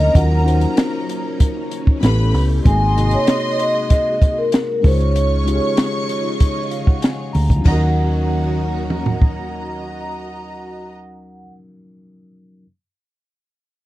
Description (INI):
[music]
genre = lush 1970s-style soul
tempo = 96 BPM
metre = 4/4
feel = straight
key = Eb dorian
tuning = A4 = 439 Hz
[part]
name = vibraphone with soft mallets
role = melody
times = 0.0-11.5 s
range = Bb4 to Ab5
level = -22 LUFS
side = equal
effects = none
[part]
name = dark studio string section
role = second line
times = 0.0-10.9 s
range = Gb4 to Db6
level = -27 LUFS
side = right 2 dB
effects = none
[part]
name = mellow reed electric piano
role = accompaniment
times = 0.0-12.7 s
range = C3 to Bb5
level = -25 LUFS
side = left 3 dB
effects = none
[part]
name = string machine, full ensemble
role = sustained chords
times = 0.0-10.9 s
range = Db3 to G4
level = -30 LUFS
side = equal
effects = phaser, ensemble chorus
[part]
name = hollow-body short-scale fingered electric bass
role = bass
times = 0.0-11.5 s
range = Ab1 to Eb2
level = -17 LUFS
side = equal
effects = none
[part]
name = compact cocktail drum kit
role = drums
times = 0.0-9.4 s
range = crash cymbal, hi-hat, kick drum, snare drum, toms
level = -15 LUFS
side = equal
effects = none
[sound]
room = little or no reverb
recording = dry, close 1970s-style studio recording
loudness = -15 LUFS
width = side -16 dB against mid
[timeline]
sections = 0.0-7.7 A section; 7.7-10.2 B section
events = reed electric piano fill 6.4-7.7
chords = 0.0 Ebm7; 2.0 A9; 2.6 Ab7; 4.8 Dbadd9; 7.7 Ebm7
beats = | 0.14 0.77 1.40 2.02 | 2.65 3.27 3.90 4.52 | 5.15 5.77 6.40 7.02 | 7.65 8.28 8.90 9.53